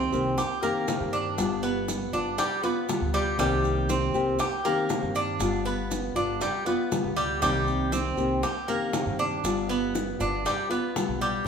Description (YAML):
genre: latin, Cuban son and guajira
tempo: 119 BPM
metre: 4/4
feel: straight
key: C minor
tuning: A4 = 440 Hz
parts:
  - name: nylon-string guitar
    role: accompaniment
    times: 0.0-11.5 s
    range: C3 to G4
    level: -29 LUFS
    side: left 3 dB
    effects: none
  - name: Cuban tres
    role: arpeggios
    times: 0.0-11.5 s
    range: G3 to G4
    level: -28 LUFS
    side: right 2 dB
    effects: none
  - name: upright bass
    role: bass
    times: 0.0-11.4 s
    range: G1 to G2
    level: -32 LUFS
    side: right 1 dB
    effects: none
  - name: maracas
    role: percussion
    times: 0.1-11.5 s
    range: none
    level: -41 LUFS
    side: right 5 dB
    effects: none
  - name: bongos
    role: percussion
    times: 0.4-11.5 s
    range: none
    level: -35 LUFS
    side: left 3 dB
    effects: none
room: wet large studio reverb, RT60 1.3 s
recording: band playing live in one room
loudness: -24 LUFS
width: side -6 dB against mid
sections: 0.0-11.5 A section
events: none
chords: 0.0 Cm7; 1.4 G7; 3.4 Cm7; 5.4 G7; 7.4 Cm7; 9.4 G7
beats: 0.38 0.88 | 1.38 1.88 2.38 2.89 | 3.39 3.89 4.40 4.90 | 5.40 5.91 6.41 6.92 | 7.42 7.93 8.43 8.94 | 9.44 9.95 10.46 10.96 | 11.47